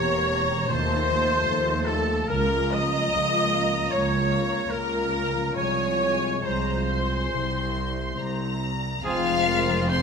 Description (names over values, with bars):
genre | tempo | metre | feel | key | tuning
classical, slow romantic movement for symphony orchestra | 66-79 BPM | 4/4 | rubato | unclear | A4 = 438 Hz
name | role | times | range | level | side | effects
rich studio violin section | melody | 0.0-10.0 s | F5 to C6 | -32 LUFS | left 5 dB | none
clear oboe | second line | 0.0-10.0 s | F4 to Eb5 | -34 LUFS | right 2 dB | none
clear studio violin section | second line | 0.0-10.0 s | C4 to Eb5 | -33 LUFS | left 2 dB | none
mellow large flute ensemble | second line | 0.0-10.0 s | Bb4 to Eb6 | -32 LUFS | left 2 dB | none
warm clarinet | second line | 0.0-10.0 s | F4 to Eb5 | -30 LUFS | left 1 dB | none
rich studio viola section | accompaniment | 0.0-10.0 s | Ab3 to Eb5 | -30 LUFS | right 3 dB | none
mellow French horn section | sustained chords | 0.0-10.0 s | F3 to G4 | -32 LUFS | left 6 dB | none
concert harp | arpeggios | 0.0-10.0 s | C3 to C6 | -35 LUFS | left 10 dB | none
rich studio double bass section | bass | 0.0-10.0 s | E1 to Eb2 | -30 LUFS | right 4 dB | none
warm symphonic cello section | bass | 0.0-10.0 s | C2 to F2 | -31 LUFS | right 4 dB | none
warm trombone section | sustained chords | 9.0-9.4 s | F3 to C4 | -34 LUFS | right 5 dB | none
warm trumpet | stabs | 9.0-9.4 s | Ab4 | -35 LUFS | right 3 dB | none
room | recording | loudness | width
moderate recital hall reverb, RT60 1.6 s | none | -22 LUFS | side -6 dB against mid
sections
0.0-9.0 A section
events
none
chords
0.0 C7/E; 0.7 F7/Eb; 2.3 Bbm/Db; 5.6 Fm/C; 7.3 C; 9.0 Fm